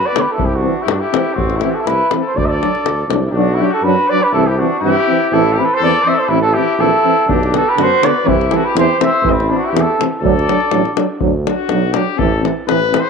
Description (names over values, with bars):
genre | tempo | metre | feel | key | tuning
balkan folk, Balkan brass band | 122 BPM | 2/4 | swing 53% on 16ths | D mixolydian | A4 = 440 Hz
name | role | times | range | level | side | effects
warm flugelhorn | melody | 0.0-10.9 s | E4 to E5 | -16 LUFS | right 3 dB | none
clear trumpet | second line | 0.0-13.1 s | C4 to C5 | -20 LUFS | left 7 dB | none
mellow French horn | accompaniment | 0.1-13.0 s | B3 to D4 | -21 LUFS | left 9 dB | none
mellow euphonium | accompaniment | 0.2-13.0 s | D3 to F#3 | -20 LUFS | right 13 dB | none
davul | percussion | 0.2-3.2, 7.3-13.1 s | none | -21 LUFS | left 5 dB | none
warm tuba | bass | 0.4-12.9 s | A1 to G2 | -19 LUFS | right 1 dB | none
room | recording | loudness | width
wet spring reverb, RT60 1.4 s, small room ambience | 1960s-style stereo with parts hard left and right | -12 LUFS | side -5 dB against mid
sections
0.0-3.4 A section; 3.4-11.2 A section; 11.2-13.1 B section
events
trumpet solo 11.2-13.1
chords
0.4 C; 1.4 Am; 2.4 D; 3.4 Bm; 4.3 C; 5.3 Am; 7.3 Bm; 8.3 C; 9.2 Am; 10.2 D; 12.2 Am